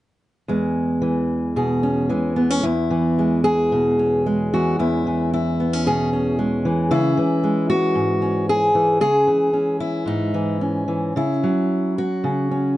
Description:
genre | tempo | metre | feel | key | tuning
folk, solo fingerstyle acoustic guitar | 112 BPM | 4/4 | rubato | E major | A4 = 442 Hz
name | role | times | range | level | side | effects
fingerpicked steel-string acoustic guitar | solo | 0.5-12.8 s | E2 to G#4 | -18 LUFS | equal | none
room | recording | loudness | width
moderate studio reverb, RT60 0.6 s | nothing above 10.8 kHz | -18 LUFS | side -15 dB against mid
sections
0.5-2.6 A section; 2.6-12.8 B section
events
none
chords
0.5 E6; 6.9 C#madd9; 11.2 F#5/C#

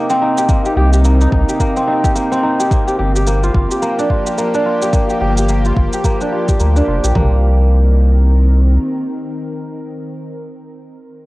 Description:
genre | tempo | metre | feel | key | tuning
organic downtempo | 108 BPM | 4/4 | swing 59% on 16ths | C minor | A4 = 440 Hz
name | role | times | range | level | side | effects
bowed-like drone | sustained chords | 0.0-10.1 s | C3 to Bb4 | -22 LUFS | equal | built-in reverb, sidechain pumping, cassette tape
kora | arpeggios | 0.0-9.1 s | Bb3 to G4 | -17 LUFS | equal | low-pass filter, cassette tape, tape echo
shaker | drums | 0.1-7.1 s | none | -28 LUFS | right 2 dB | cassette tape
organic electronic drum kit | drums | 0.5-7.3 s | kick drum, toms | -16 LUFS | equal | cassette tape
warm sub bass | bass | 0.8-8.8 s | F1 to D2 | -12 LUFS | equal | none
room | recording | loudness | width
light reverb, digital ambience | home recording on cassette | -12 LUFS | side -20 dB against mid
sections
0.0-7.2 A section; 7.2-9.4 B section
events
filter sweep on sub bass 0.0-7.2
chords
0.0 Cm7; 2.7 Gm7; 7.2 Cm7

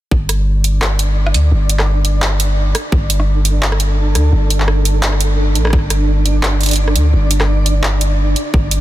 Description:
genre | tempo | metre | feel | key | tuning
half-time drum and bass | 171 BPM | 4/4 | swing 55% on 16ths, half-time | unclear | A4 = 444 Hz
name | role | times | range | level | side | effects
long sustained 808-style bass | bass | 0.1-8.8 s | G1 to D2 | -14 LUFS | equal | none
electronic kick drum | drums | 0.1-0.2, 2.9-3.0, 5.7-5.8, 8.5-8.6 s | none | -14 LUFS | equal | studio reverb
flickering grainy texture | texture | 0.6-8.8 s | D4 to G5 | -23 LUFS | right 1 dB | built-in reverb
drum and bass drum kit | drums | 0.3-8.8 s | handclaps, hi-hat, rim click | -19 LUFS | right 1 dB | overdrive, studio reverb
room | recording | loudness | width
little or no reverb | dense, heavily limited modern master | -12 LUFS | side -14 dB against mid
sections
0.1-8.8 A section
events
none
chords
0.1 G5

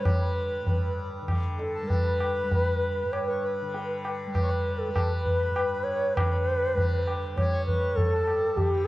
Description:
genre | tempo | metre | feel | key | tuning
indian classical, Hindustani | 99 BPM | 5/4 | straight | G raga yaman | A4 = 440 Hz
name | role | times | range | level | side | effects
bansuri | melody | 0.0-8.9 s | G4 to C#5 | -28 LUFS | equal | tape echo
hand-pumped harmonium | second line | 0.0-8.9 s | G4 to C#5 | -38 LUFS | left 1 dB | none
tanpura | drone | 0.0-8.9 s | G2 to G3 | -38 LUFS | equal | none
tabla | percussion | 0.1-8.8 s | none | -27 LUFS | equal | none
room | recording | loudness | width
moderate plate reverb, RT60 2.9 s | echo-heavy mix, cassette tape | -24 LUFS | side -17 dB against mid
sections
0.0-6.2 A section; 6.2-8.9 B section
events
speeding up 0.0-8.9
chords
none

